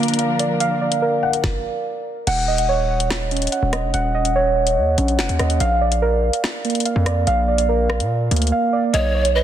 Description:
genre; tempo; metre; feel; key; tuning
hip hop, drill; 144 BPM; 4/4; half-time; Eb minor; A4 = 442 Hz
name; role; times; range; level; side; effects
dark concert grand piano; accompaniment; 0.0-1.6 s; D3 to Gb5; -25 LUFS; left 7 dB; low-pass filter
dark symphonic string section; sustained chords; 0.0-1.4 s; F3 to Bb4; -27 LUFS; left 3 dB; low-pass filter
muted felt-like synth keys; arpeggios; 0.0-9.4 s; Bb3 to Gb5; -19 LUFS; right 3 dB; chorus, low-pass filter, ping-pong delay
drill drum kit; drums; 0.0-9.3 s; crash cymbal, finger snaps, hi-hat, kick drum, rim click, snare drum; -25 LUFS; left 2 dB; overdrive, vintage 12-bit sampler grit
distorted 808-style bass; bass; 2.3-9.4 s; Eb1 to Bb2; -20 LUFS; equal; distortion
breathy mellow pan flute; second line; 8.9-9.4 s; C#5 to D#5; -22 LUFS; equal; ping-pong delay
room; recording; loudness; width
small room ambience; dense, heavily limited modern master; -17 LUFS; side -10 dB against mid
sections
0.0-2.3 A section; 2.3-9.4 B section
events
filter sweep 0.0-2.3; grand piano fill 1.0-2.3; stop 1.4-2.3; drums muted 8.5-8.9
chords
0.0 Bb; 2.3 Ebm7; 5.6 Bb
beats
0.19 | 0.60 1.02 1.44 1.85 | 2.27 2.69 3.10 3.52 | 3.94 4.35 4.77 5.19 | 5.60 6.02 6.44 6.85 | 7.27 7.69 8.10 8.52 | 8.94 9.35

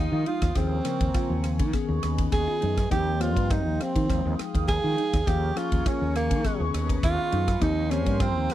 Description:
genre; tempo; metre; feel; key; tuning
electric jazz fusion; 102 BPM; 4/4; straight; Eb mixolydian; A4 = 442 Hz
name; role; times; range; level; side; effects
warm tenor saxophone; melody; 0.0-8.5 s; Bb3 to G#4; -28 LUFS; right 3 dB; slapback echo
mellow tine electric piano; accompaniment; 0.0-8.5 s; Db3 to G5; -32 LUFS; left 9 dB; phaser
phased analog pad; sustained chords; 0.0-8.5 s; Ab3 to Eb6; -37 LUFS; equal; phaser, chorus
fretless electric bass; bass; 0.0-8.5 s; Eb2 to Eb3; -27 LUFS; equal; lush chorus
mellow electric guitar; stabs; 0.1-8.4 s; C4 to F4; -35 LUFS; right 3 dB; wide subtle chorus
modern studio drum kit; drums; 0.3-8.5 s; kick drum, ride cymbal, rim click; -28 LUFS; equal; none
room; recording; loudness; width
little or no reverb; dry, close 1970s-style studio recording; -23 LUFS; side -13 dB against mid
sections
0.0-8.5 A section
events
none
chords
0.0 Fm9/Eb; 0.6 Bbm7/Eb; 1.7 B69/D#; 2.9 Eb69; 4.1 Fm9/Eb; 5.3 Bbm7/Eb; 6.4 B69/D#; 7.6 Eb13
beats
| 0.56 1.15 1.74 2.33 | 2.92 3.50 4.09 4.68 | 5.27 5.86 6.44 7.03 | 7.62 8.21

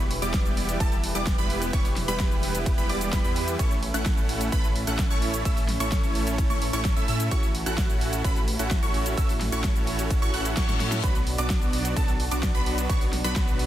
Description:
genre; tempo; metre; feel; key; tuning
EDM, festival progressive house; 129 BPM; 4/4; straight; unclear; A4 = 445 Hz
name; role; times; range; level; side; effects
lush unison pad; sustained chords; 0.0-13.7 s; E3 to B4; -36 LUFS; right 1 dB; chorus, sidechain pumping
wide detuned saw bass; bass; 0.0-13.7 s; E1 to A2; -31 LUFS; equal; chorus, sidechain pumping
big-room dance drum kit; drums; 0.1-13.7 s; hi-hat, ride cymbal, shaker, snare drum; -33 LUFS; equal; overdrive
wide unison pluck; arpeggios; 0.2-13.7 s; A5 to F#6; -34 LUFS; right 1 dB; phaser, sidechain pumping, dub echo
supersaw chords; riff; 0.2-13.7 s; F#3 to F#5; -30 LUFS; right 1 dB; sidechain pumping, dub echo
electronic kick drum; drums; 0.3-13.5 s; none; -25 LUFS; equal; overdrive
reverse cymbal; sound effects; 10.3-11.0 s; none; -35 LUFS; left 8 dB; none
room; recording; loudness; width
digital ambience; dense, heavily limited modern master; -22 LUFS; side -12 dB against mid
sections
0.0-13.7 A section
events
reverse cymbal 10.3-11.0; drum fill 10.7-11.0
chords
0.0 Em; 3.6 F#m7/A; 11.0 Bm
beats
0.34 0.80 1.27 | 1.73 2.20 2.66 3.13 | 3.59 4.06 4.52 4.99 | 5.45 5.92 6.38 6.85 | 7.32 7.78 8.24 8.71 | 9.18 9.64 10.11 10.57 | 11.04 11.50 11.97 12.43 | 12.90 13.36

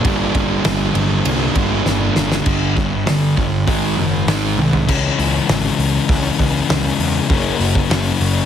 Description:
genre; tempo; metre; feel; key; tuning
quiet-loud alternative rock; 99 BPM; 4/4; straight; unclear; A4 = 439 Hz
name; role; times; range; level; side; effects
thick fuzz guitar; riff; 0.0-8.5 s; F#2 to D4; -19 LUFS; left 6 dB; distortion
thick fuzz guitar; riff; 0.0-4.9 s; G2 to A#3; -20 LUFS; right 12 dB; distortion
fuzz picked electric bass; bass; 0.0-8.4 s; F#1 to E2; -21 LUFS; equal; overdrive
loose indie drum kit; drums; 0.0-8.3 s; crash cymbal, hi-hat, kick drum, ride cymbal, snare drum, toms; -20 LUFS; equal; none
room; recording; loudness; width
light reverb; heavily compressed radio sound, multiband compression; -14 LUFS; side -9 dB against mid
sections
0.0-2.5 A section; 2.5-4.9 B section; 4.9-8.5 C section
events
drum fill 1.9-2.5, 4.6-4.9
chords
0.0 Gm; 2.5 G5; 3.7 G#7; 4.9 C#m; 7.3 F#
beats
| 0.04 0.65 1.25 1.86 | 2.46 3.06 3.67 4.27 | 4.88 5.48 6.08 6.69 | 7.29 7.90

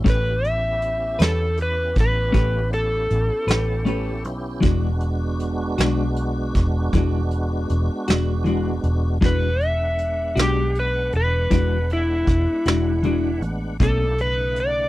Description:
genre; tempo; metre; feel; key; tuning
slow blues; 52 BPM (dotted quarters); 12/8; straight; E mixolydian; A4 = 440 Hz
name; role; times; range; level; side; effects
clean electric guitar; accompaniment; 0.0-14.0 s; B2 to B4; -24 LUFS; left 3 dB; tremolo
tonewheel organ; sustained chords; 0.0-14.9 s; C#3 to F#5; -30 LUFS; right 2 dB; chorus vibrato, slow rotary speaker
vintage muted fingered electric bass; bass; 0.0-14.9 s; E1 to E2; -22 LUFS; equal; none
overdriven slide guitar; melody; 0.1-14.9 s; E4 to E5; -23 LUFS; left 1 dB; none
vintage brush drum kit; drums; 0.1-14.7 s; hi-hat, kick drum, snare drum; -20 LUFS; equal; none
room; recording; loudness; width
little or no reverb; dry, close 1970s-style studio recording; -19 LUFS; side -16 dB against mid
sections
0.0-14.9 A section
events
none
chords
0.0 A9; 4.6 E9; 13.8 B9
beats
| 0.07 1.22 2.36 3.50 | 4.65 5.79 6.94 8.09 | 9.23 10.38 11.52 12.67 | 13.81

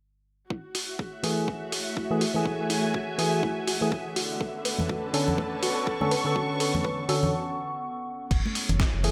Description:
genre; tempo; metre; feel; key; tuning
deep house; 123 BPM; 4/4; swing 58% on 16ths; F# minor; A4 = 442 Hz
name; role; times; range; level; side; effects
warbly tape-like pad; sustained chords; 1.2-9.1 s; A3 to C#6; -39 LUFS; equal; chorus, built-in reverb, vintage 12-bit sampler grit, sidechain pumping
soft round pluck; arpeggios; 0.5-7.2 s; E4 to B4; -38 LUFS; equal; chorus, sidechain pumping, digital delay
electronic kick drum; drums; 0.5-8.9 s; none; -33 LUFS; equal; high-pass filter on kick
dark studio string section; texture; 0.5-9.1 s; D3 to C#6; -34 LUFS; equal; sidechain pumping
dusty soul sampler-style drum kit; drums; 0.7-9.1 s; crash cymbal, hi-hat, snare drum; -34 LUFS; equal; none
percussive organ stab; stabs; 1.2-9.1 s; D3 to A4; -31 LUFS; equal; chorus, sidechain pumping, digital delay
congas; percussion; 4.8-9.1 s; none; -34 LUFS; equal; none
round analog bass; bass; 8.3-9.1 s; F#1; -29 LUFS; equal; sidechain pumping
room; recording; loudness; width
wet lush hall reverb, RT60 1.9 s; bright 1980s-style digital production, faint mains hum; -28 LUFS; mono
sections
0.5-8.3 A section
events
filter sweep on synth arpeggio sound 0.5-8.3; break 7.3-8.3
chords
0.5 F#m9; 4.2 Bm9; 8.3 F#m9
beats
| 0.50 0.99 1.48 1.97 | 2.46 2.94 3.43 3.92 | 4.41 4.89 5.38 5.87 | 6.36 6.85 7.33 7.82 | 8.31 8.80

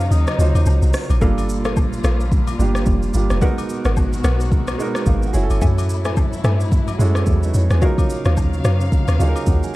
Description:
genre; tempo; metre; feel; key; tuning
amapiano; 109 BPM; 4/4; swing 58% on 16ths; unclear; A4 = 438 Hz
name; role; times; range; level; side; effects
soft struck synth lead; melody; 0.0-0.9 s; Eb5 to F5; -27 LUFS; left 1 dB; chorus, slapback echo
warm grand piano; accompaniment; 0.0-9.8 s; Gb3 to G#5; -25 LUFS; right 5 dB; none
warm studio string section; sustained chords; 0.0-9.8 s; A2 to F5; -28 LUFS; left 2 dB; none
deep log drum bass; bass; 0.0-9.6 s; F1 to G2; -18 LUFS; equal; none
smooth R&B drum kit; drums; 0.0-9.7 s; hi-hat, kick drum, rim click, shaker; -20 LUFS; equal; none
agogo bells and woodblock; percussion; 0.3-9.5 s; none; -34 LUFS; left 11 dB; none
mallet-like synth pluck; stabs; 1.2-8.8 s; Gb4 to G#5; -28 LUFS; left 4 dB; chorus, slapback echo
room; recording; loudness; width
little or no reverb; dark, warm production; -15 LUFS; side -18 dB against mid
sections
0.0-1.2 A section; 1.2-9.8 B section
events
break 0.0-1.2; drop 0.0-1.2; grand piano fill 4.5-5.6, 8.9-9.8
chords
0.0 Ebm9; 1.2 Gm9; 3.4 Abm9; 5.3 F#m9; 7.8 Ebm9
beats
0.11 0.66 | 1.22 1.76 2.32 2.87 | 3.42 3.97 4.52 5.07 | 5.62 6.17 6.72 7.27 | 7.82 8.37 8.92 9.47

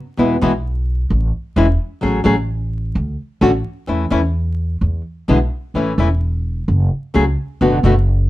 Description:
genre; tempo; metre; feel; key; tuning
tango; 130 BPM; 4/4; rubato; A major; A4 = 440 Hz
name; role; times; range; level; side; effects
nylon-string guitar; accompaniment; 0.2-7.9 s; B2 to G#4; -15 LUFS; left 1 dB; none
upright bass; bass; 0.2-8.3 s; E1 to E2; -17 LUFS; equal; none
room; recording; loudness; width
light reverb; dark, warm production, vinyl crackle; -15 LUFS; side -16 dB against mid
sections
0.0-8.3 A section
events
none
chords
0.2 E; 1.1 A5; 2.0 F#madd9/A; 3.0 Dmaj7(no3); 3.9 A/E; 4.8 E5; 5.7 A; 6.7 F#5; 7.6 Bm7/F#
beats
| 0.19 0.65 1.11 1.57 | 2.03 2.49 2.95 3.41 | 3.87 4.34 4.81 5.28 | 5.75 6.21 6.68 7.14 | 7.61 8.07

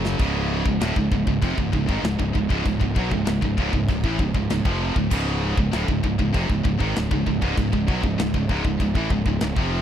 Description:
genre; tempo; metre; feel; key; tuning
heavy metal; 98 BPM; 4/4; straight; C# major; A4 = 439 Hz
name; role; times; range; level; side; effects
heavy high-gain guitar; riff; 0.0-9.8 s; C#2 to F#3; -28 LUFS; left 11 dB; distortion
heavy high-gain guitar; riff; 0.0-9.8 s; C#2 to F#3; -26 LUFS; right 9 dB; distortion
high-gain distorted guitar; riff; 0.0-9.8 s; C#2 to F#3; -30 LUFS; equal; distortion
fuzz fingered electric bass; bass; 0.0-9.8 s; C#1 to B1; -26 LUFS; left 1 dB; overdrive
tight metal drum kit; drums; 0.1-9.7 s; china cymbal, crash cymbal, kick drum, snare drum; -24 LUFS; left 1 dB; none
room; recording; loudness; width
little or no reverb; dry, close 1970s-style studio recording; -20 LUFS; side -10 dB against mid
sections
0.2-9.8 A section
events
drum fill 0.0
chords
0.2 C#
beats
| 0.20 0.81 1.43 2.04 | 2.66 3.27 3.89 4.50 | 5.12 5.73 6.35 6.96 | 7.57 8.19 8.80 9.41

